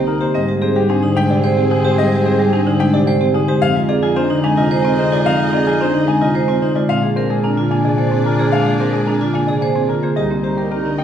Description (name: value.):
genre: classical, minimalist pattern music.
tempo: 110 BPM.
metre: 3/4.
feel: straight.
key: unclear.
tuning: A4 = 440 Hz.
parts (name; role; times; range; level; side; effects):
bright clarinet; second line; 0.0-10.9 s; C4 to Eb4; -26 LUFS; right 3 dB; none.
marimba with soft mallets; accompaniment; 0.0-11.0 s; C3 to C4; -18 LUFS; equal; none.
warm studio string section; sustained chords; 0.0-11.0 s; Ab4 to Eb5; -27 LUFS; left 2 dB; none.
vibraphone with hard mallets; arpeggios; 0.0-11.0 s; C4 to C5; -19 LUFS; right 4 dB; none.
mellow bass clarinet; bass; 0.0-11.0 s; C2 to Bb2; -22 LUFS; left 2 dB; none.
clear grand piano; melody; 0.1-11.0 s; G4 to Ab5; -22 LUFS; left 4 dB; none.
room: wet recital hall reverb, RT60 1.6 s.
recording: recorded in a church or concert hall.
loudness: -14 LUFS.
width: side -9 dB against mid.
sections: 0.0-10.2 A section.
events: none.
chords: 0.3 Abmaj7; 3.6 Fm7; 6.9 Bb7; 10.2 Cm7.